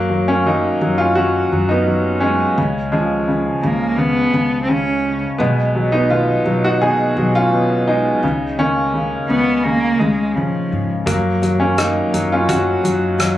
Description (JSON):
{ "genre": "acoustic folk-pop ballad", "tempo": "85 BPM", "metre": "4/4", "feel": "straight", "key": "F# major", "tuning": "A4 = 439 Hz", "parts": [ { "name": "bright baby grand piano", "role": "melody", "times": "0.0-13.4 s", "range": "B2 to G#4", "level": "-16 LUFS", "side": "equal", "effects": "plate reverb" }, { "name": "upright bass", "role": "bass", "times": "0.0-13.4 s", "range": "B1 to A#2", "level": "-24 LUFS", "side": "equal", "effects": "none" }, { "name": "warm cello", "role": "second line", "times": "3.6-10.9 s", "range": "E#3 to C#4", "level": "-18 LUFS", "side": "equal", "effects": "none" }, { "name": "natural country drum kit", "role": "drums", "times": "11.1-13.4 s", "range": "hi-hat, kick drum, rim click", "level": "-22 LUFS", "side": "left 1 dB", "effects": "none" } ], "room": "light reverb", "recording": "recorded on a phone in the room, club reverb", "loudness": "-14 LUFS", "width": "side -13 dB against mid", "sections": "0.0-13.4 A section", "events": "none", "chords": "0.0 F#; 2.6 C#; 5.4 G#m7/B; 8.2 C#5; 11.1 F#", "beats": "0.46 1.17 1.87 | 2.58 3.28 3.99 4.69 | 5.40 6.11 6.81 7.52 | 8.23 8.94 9.65 10.36 | 11.07 11.78 12.49 13.19" }